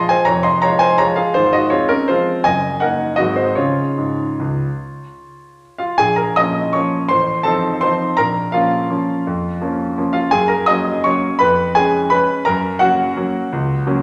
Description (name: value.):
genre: classical, piano waltz.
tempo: 143-181 BPM.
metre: 3/4.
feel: rubato.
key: Db major, Bb minor from 6.0 s.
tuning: A4 = 441 Hz.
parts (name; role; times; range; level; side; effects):
clear grand piano; solo; 0.0-14.0 s; F1 to Eb6; -17 LUFS; equal; none.
room: wet recital hall reverb, RT60 1.4 s.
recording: none.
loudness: -17 LUFS.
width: mono.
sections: 0.0-6.0 A section; 6.0-14.0 B section.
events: none.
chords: 0.0 Bbm7; 1.3 Fm/Ab; 2.4 Ebm/Gb; 3.2 Ab7; 3.6 Db; 6.0 Bbm; 7.1 F7/A; 8.2 Bbm; 10.3 Gb; 11.4 Db7/F; 12.5 Gb.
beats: | 0.27 0.62 0.99 | 1.35 1.71 2.08 | 2.44 2.80 3.18 | 3.57 3.98 4.40 | 4.80 5.19 5.60 | 6.00 6.37 6.75 | 7.11 7.46 7.82 | 8.18 8.54 8.90 | 9.26 9.61 9.97 | 10.33 10.68 11.05 | 11.41 11.76 12.11 | 12.46 12.81 13.17 | 13.52 13.86.